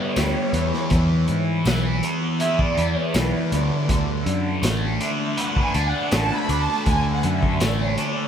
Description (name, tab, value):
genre	psychedelic rock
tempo	81 BPM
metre	4/4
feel	straight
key	unclear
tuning	A4 = 438 Hz
part	dark studio string section	sustained chords	0.0-8.3 s	B4 to B5	-28 LUFS	right 3 dB	none
part	thick fuzz guitar	riff	0.0-8.3 s	D3 to B4	-23 LUFS	equal	distortion, phaser
part	picked electric bass	bass	0.2-8.0 s	A1 to G#2	-24 LUFS	equal	none
part	crunchy breakbeat drum kit	drums	0.2-8.2 s	hi-hat, kick drum, snare drum	-26 LUFS	equal	none
part	tambourine	percussion	0.2-7.8 s	none	-43 LUFS	left 5 dB	none
room	moderate huge ambient reverb, RT60 6.9 s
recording	dreamy mix soaked in reverb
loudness	-19 LUFS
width	side -8 dB against mid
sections	0.0-8.3 A section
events	string section solo 0.0-8.3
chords	0.0 G; 0.5 E; 3.5 D6